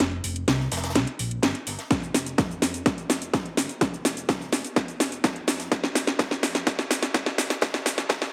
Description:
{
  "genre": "progressive house",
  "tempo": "126 BPM",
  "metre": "4/4",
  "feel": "straight",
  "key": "unclear",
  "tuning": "A4 = 440 Hz",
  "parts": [
    { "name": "dark detuned saw bass", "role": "bass", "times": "0.0-8.3 s", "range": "F1 to F2", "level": "-37 LUFS", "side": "equal", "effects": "sidechain pumping" },
    { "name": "compact cocktail drum kit", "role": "drums", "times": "0.0-8.3 s", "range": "hi-hat, snare drum", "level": "-39 LUFS", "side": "equal", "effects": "none" },
    { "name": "house drum kit", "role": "drums", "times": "0.0-8.3 s", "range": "hi-hat, shaker, snare drum", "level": "-27 LUFS", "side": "equal", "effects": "studio reverb" },
    { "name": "electronic kick drum", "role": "drums", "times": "1.9-8.2 s", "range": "none", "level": "-30 LUFS", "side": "equal", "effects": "overdrive, studio reverb" }
  ],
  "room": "moderate digital room reverb, RT60 1.2 s, small room reverb",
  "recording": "high-pass filter",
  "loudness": "-26 LUFS",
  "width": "mono",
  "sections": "0.0-8.3 A section",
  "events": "build-up 0.0-8.3; drum fill 0.0-8.3",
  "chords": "none"
}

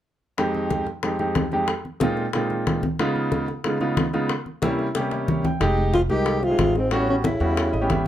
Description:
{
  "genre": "Afro-Cuban jazz",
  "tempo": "184 BPM",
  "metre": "4/4",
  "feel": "straight",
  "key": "F minor",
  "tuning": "A4 = 440 Hz",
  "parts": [
    { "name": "clear concert grand piano", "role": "accompaniment", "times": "0.4-8.1 s", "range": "F2 to G5", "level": "-24 LUFS", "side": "right 1 dB", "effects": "none" },
    { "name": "bongos", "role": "percussion", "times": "0.4-8.1 s", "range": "none", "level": "-30 LUFS", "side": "left 4 dB", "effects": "none" },
    { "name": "congas", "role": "percussion", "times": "0.4-8.1 s", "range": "none", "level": "-26 LUFS", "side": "left 1 dB", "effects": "none" },
    { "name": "upright bass", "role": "bass", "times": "5.6-8.1 s", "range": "F1 to E2", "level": "-25 LUFS", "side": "equal", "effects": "none" },
    { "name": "breathy alto saxophone", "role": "melody", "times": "5.9-8.0 s", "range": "C4 to G4", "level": "-23 LUFS", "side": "left 1 dB", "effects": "plate reverb" },
    { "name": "trombone with cup mute", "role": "second line", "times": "5.9-8.0 s", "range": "Ab2 to Eb3", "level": "-29 LUFS", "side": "right 4 dB", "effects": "none" }
  ],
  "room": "moderate club reverb, RT60 0.6 s",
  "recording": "none",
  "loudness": "-20 LUFS",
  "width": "side -11 dB against mid",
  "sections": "0.4-5.6 A section; 5.6-8.1 B section",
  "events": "drum fill 5.0-5.6; grand piano fill 5.1-5.6, 7.6-8.1",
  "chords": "0.4 Fm9; 1.7 Bb9sus4; 3.0 Db9; 4.3 C7b9; 5.6 Fm7; 6.9 A13"
}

